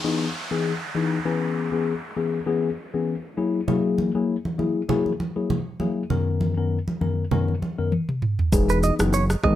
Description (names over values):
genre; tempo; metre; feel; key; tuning
afrobeats; 99 BPM; 4/4; swing 55% on 16ths; B major; A4 = 438 Hz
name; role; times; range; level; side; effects
mellow tine electric piano; accompaniment; 0.0-9.6 s; F#2 to A#4; -23 LUFS; left 4 dB; phaser
downlifter; sound effects; 0.0-3.7 s; none; -33 LUFS; right 1 dB; none
congas; percussion; 3.7-7.8 s; none; -28 LUFS; right 3 dB; none
afro-pop drum kit; drums; 7.9-9.6 s; kick drum, rim click, shaker, toms; -22 LUFS; right 1 dB; none
fat analog bass; bass; 8.5-9.6 s; E1 to G#1; -21 LUFS; right 1 dB; none
direct-recorded clean electric guitar; riff; 8.7-9.5 s; B4 to D#5; -25 LUFS; right 6 dB; none
room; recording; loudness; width
light reverb; none; -22 LUFS; side -12 dB against mid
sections
0.0-8.5 A section; 8.5-9.6 B section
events
drum fill 7.9-8.5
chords
0.0 Emaj7; 1.3 C#m7; 3.4 F#9; 6.1 Bmaj9/F#; 8.5 Emaj7